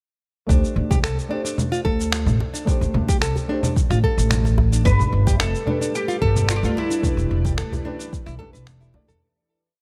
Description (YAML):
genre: organic downtempo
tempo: 110 BPM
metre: 4/4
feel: straight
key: unclear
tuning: A4 = 445 Hz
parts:
  - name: felt-muted upright piano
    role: accompaniment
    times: 0.5-9.2 s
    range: A3 to D5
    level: -34 LUFS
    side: equal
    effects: vintage 12-bit sampler grit, sidechain pumping, delay
  - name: nylon-string guitar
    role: arpeggios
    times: 0.5-9.2 s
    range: D4 to B4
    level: -31 LUFS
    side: equal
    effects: delay
  - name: upright bass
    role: bass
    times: 0.5-9.2 s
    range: E1 to E2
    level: -23 LUFS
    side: equal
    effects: tube saturation, sidechain pumping
  - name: electronic kick drum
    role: drums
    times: 0.5-8.5 s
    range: none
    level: -24 LUFS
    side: equal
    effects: studio reverb
  - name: electronic shaker, congas and finger snaps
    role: drums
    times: 0.5-9.2 s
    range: none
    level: -28 LUFS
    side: equal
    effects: studio reverb
  - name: djembe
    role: percussion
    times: 0.9-9.2 s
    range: none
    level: -30 LUFS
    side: equal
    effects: none
  - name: oud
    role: melody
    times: 4.9-7.8 s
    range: E4 to B4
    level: -29 LUFS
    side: equal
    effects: delay
  - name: bowed-like drone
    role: sustained chords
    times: 5.6-9.2 s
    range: E3 to D5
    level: -38 LUFS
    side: equal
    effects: built-in reverb, sidechain pumping
room: small room ambience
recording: none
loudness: -21 LUFS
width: mono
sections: 0.5-9.2 groove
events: fade-out 6.3-9.2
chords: 0.5 D7(no3); 4.9 Gadd9; 7.0 Em7